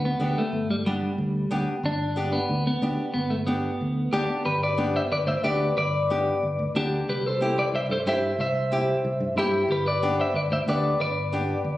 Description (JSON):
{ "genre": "latin, cumbia", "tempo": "183 BPM", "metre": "4/4", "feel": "straight", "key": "G major", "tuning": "A4 = 440 Hz", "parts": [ { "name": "fingered electric bass", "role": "bass", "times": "0.0-11.8 s", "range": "G1 to G2", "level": "-29 LUFS", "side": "equal", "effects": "none" }, { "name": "clean electric guitar", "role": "melody", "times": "0.1-11.8 s", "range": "G3 to E5", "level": "-25 LUFS", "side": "equal", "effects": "spring reverb, tape echo" }, { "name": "nylon-string guitar", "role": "accompaniment", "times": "0.2-11.6 s", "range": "B3 to G4", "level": "-29 LUFS", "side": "left 1 dB", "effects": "none" } ], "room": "light reverb", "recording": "recorded on a phone in the room, studio reverb, compression", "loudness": "-23 LUFS", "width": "side -15 dB against mid", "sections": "0.0-4.5 A section; 4.5-11.8 B section", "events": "none", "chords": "0.0 G; 7.1 C; 9.7 G" }